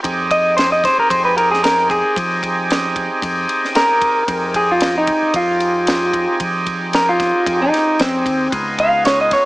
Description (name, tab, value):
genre	straight-eighth soul blues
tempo	113 BPM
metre	4/4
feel	swing 55% on 16ths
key	F minor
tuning	A4 = 442 Hz
part	overdriven tonewheel organ	accompaniment	0.0-9.5 s	Cb4 to Ab4	-20 LUFS	right 1 dB	slow rotary speaker
part	fingered electric bass	bass	0.0-9.3 s	Db2 to F3	-28 LUFS	equal	none
part	tight funk drum kit	drums	0.0-9.4 s	kick drum, ride cymbal, snare drum	-24 LUFS	equal	none
part	electric guitar through a small old amp	melody	0.3-9.5 s	C4 to F5	-15 LUFS	equal	none
room	light reverb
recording	small speaker sound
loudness	-14 LUFS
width	side -20 dB against mid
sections	0.0-9.5 A section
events	clean electric guitar solo 0.0-9.5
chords	0.0 Fm7; 8.5 Db7